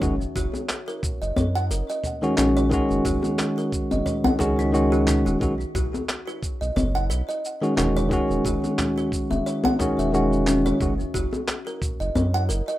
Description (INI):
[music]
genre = organic downtempo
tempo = 89 BPM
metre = 4/4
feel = swing 55% on 16ths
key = unclear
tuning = A4 = 441 Hz
[part]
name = bell-like tine electric piano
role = accompaniment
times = 0.0-10.9 s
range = D#3 to F#4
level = -23 LUFS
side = equal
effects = sidechain pumping, digital delay
[part]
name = kalimba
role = arpeggios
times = 0.0-12.8 s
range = C#4 to F#5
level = -29 LUFS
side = equal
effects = digital delay
[part]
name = round analog bass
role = bass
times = 0.0-12.6 s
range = D#1 to F#2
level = -26 LUFS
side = equal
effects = tube saturation, sidechain pumping
[part]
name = dusty soul sampler-style drum kit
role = drums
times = 0.0-12.8 s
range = handclaps, shaker, toms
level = -31 LUFS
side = right 1 dB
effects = none
[part]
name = electronic kick drum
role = drums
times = 0.0-12.0 s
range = none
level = -30 LUFS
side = equal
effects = none
[part]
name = bronze singing bowl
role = texture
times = 0.0-12.8 s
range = C#4 to C#5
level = -48 LUFS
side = left 2 dB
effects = none
[part]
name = djembe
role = percussion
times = 0.5-12.3 s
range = none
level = -26 LUFS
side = left 2 dB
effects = none
[sound]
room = moderate small room reverb, RT60 0.6 s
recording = rough home demo mix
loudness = -21 LUFS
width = side -14 dB against mid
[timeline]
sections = 0.0-12.8 A section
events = none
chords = 0.0 F#6; 5.4 Esus2; 10.8 F#6